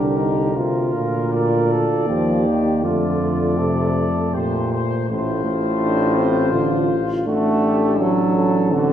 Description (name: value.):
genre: classical, hymn-like piece for brass band.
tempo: 81 BPM.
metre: 3/4.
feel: rubato.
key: unclear.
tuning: A4 = 439 Hz.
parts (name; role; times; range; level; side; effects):
mellow trumpet section; melody; 0.0-8.9 s; A4 to D5; -27 LUFS; left 6 dB; none.
mellow flugelhorn; second line; 0.0-8.9 s; F4 to Bb4; -26 LUFS; right 3 dB; none.
bright trombone; accompaniment; 0.0-8.9 s; A2 to A3; -22 LUFS; right 2 dB; none.
warm euphonium; accompaniment; 0.0-8.9 s; A3 to F4; -24 LUFS; left 2 dB; none.
warm tuba; bass; 0.0-8.9 s; A1 to F2; -23 LUFS; equal; none.
room: wet recital hall reverb, RT60 1.4 s.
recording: recorded in a church or concert hall, lossy compression artefacts.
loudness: -17 LUFS.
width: side -10 dB against mid.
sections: 0.0-8.9 A section.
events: none.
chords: 0.0 Bb; 0.6 Bb/D; 2.8 F; 5.1 F/A; 7.3 D/A.